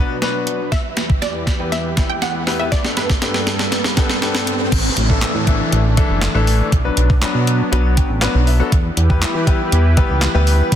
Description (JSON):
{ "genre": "dance-pop", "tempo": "120 BPM", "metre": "4/4", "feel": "straight", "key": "unclear", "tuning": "A4 = 439 Hz", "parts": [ { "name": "wide unison pluck", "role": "melody", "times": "0.0-3.4 s", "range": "B4 to G5", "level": "-25 LUFS", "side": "moving between left 2 dB and right 7 dB", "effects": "auto-pan, tape echo" }, { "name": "clear baby grand piano", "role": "accompaniment", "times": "0.0-10.7 s", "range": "E3 to G5", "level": "-22 LUFS", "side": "left 5 dB", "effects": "sidechain pumping" }, { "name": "warm analog pad", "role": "sustained chords", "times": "0.0-10.8 s", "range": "E2 to B4", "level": "-25 LUFS", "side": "right 2 dB", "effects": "chorus, sidechain pumping" }, { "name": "riser and downlifter", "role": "sound effects", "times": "0.4-8.7 s", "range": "none", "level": "-26 LUFS", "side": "right 1 dB", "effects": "none" }, { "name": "crisp 8-bit digital drum machine", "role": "drums", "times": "0.2-10.8 s", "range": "crash cymbal, handclaps, hi-hat, kick drum, snare drum", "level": "-18 LUFS", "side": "equal", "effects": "overdrive" }, { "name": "chorused synth bass", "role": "bass", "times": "4.7-10.8 s", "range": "F#1 to E3", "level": "-16 LUFS", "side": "right 1 dB", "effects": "sidechain pumping" } ], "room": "light reverb", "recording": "dense, heavily limited modern master", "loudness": "-14 LUFS", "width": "side -10 dB against mid", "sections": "0.0-4.7 A section; 4.7-10.8 B section", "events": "build-up 0.0-4.7; drum fill 0.0-4.7; drop 4.7-10.8; grand piano fill 7.7-8.7", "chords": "0.0 Bm; 0.7 Em; 2.7 Gadd9; 4.7 Asus4; 6.7 Bm; 8.7 Em" }